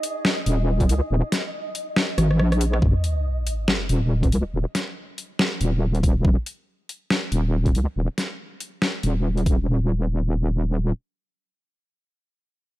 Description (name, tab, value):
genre	deep dubstep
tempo	140 BPM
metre	4/4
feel	swing 59% on 16ths, half-time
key	unclear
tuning	A4 = 440 Hz
part	dubstep drum kit	drums	0.0-9.6 s	hi-hat, rim click, snare drum	-25 LUFS	equal	overdrive, small room ambience
part	flickering grainy texture	texture	0.0-2.8 s	Eb5	-33 LUFS	right 1 dB	built-in reverb
part	wobble bass	bass	0.5-10.9 s	Eb1 to Db2	-20 LUFS	equal	chorus
part	electronic kick drum	drums	0.8-9.6 s	none	-20 LUFS	equal	overdrive, small room ambience
part	sub drop	sound effects	2.8-4.5 s	none	-25 LUFS	equal	none
room	little or no reverb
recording	dark, warm production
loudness	-20 LUFS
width	side -16 dB against mid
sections	0.0-2.8 A section; 2.8-9.7 B section; 9.7-12.8 C section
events	drop 0.0-2.8; drum fill 2.2-2.8; kick drops out 2.4-2.8; impact 2.8-4.5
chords	0.0 Eb5; 2.8 N.C.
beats	0.25 0.68 | 1.10 1.53 1.96 2.39 | 2.82 3.25 3.67 4.10 | 4.53 4.96 5.39 5.82 | 6.25 6.67 7.10 7.53 | 7.96 8.39 8.82 9.25 | 9.68 10.10 10.53